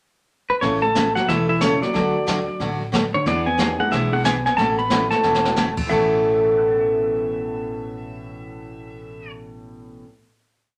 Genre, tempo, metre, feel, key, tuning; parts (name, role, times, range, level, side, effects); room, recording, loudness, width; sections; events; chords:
country, western swing; 182 BPM; 4/4; swing 63% on 8ths; A major; A4 = 445 Hz
pedal steel guitar; melody; 0.5-9.3 s; B4 to B5; -25 LUFS; equal
vintage hollow-body jazz guitar; second line; 0.6-10.0 s; C#3 to B3; -28 LUFS; equal
clear upright piano; accompaniment; 0.6-10.3 s; A2 to C#7; -33 LUFS; equal
picked steel-string acoustic guitar; accompaniment; 0.6-10.1 s; A2 to A4; -26 LUFS; equal
upright bass; bass; 0.6-10.0 s; E1 to E2; -34 LUFS; equal
jazz brush drum kit; drums; 0.6-5.8 s; brushed snare drum, crash cymbal, hi-hat, kick drum, snare drum; -28 LUFS; equal
wet studio reverb, RT60 0.5 s; -20 LUFS; mono
0.0-0.6 pickup bar; 0.6-5.9 A section; 5.9-8.5 final chord
drum fill 5.2-5.6
0.0 N.C.; 0.6 A; 1.9 D; 3.3 E7; 4.6 Aadd9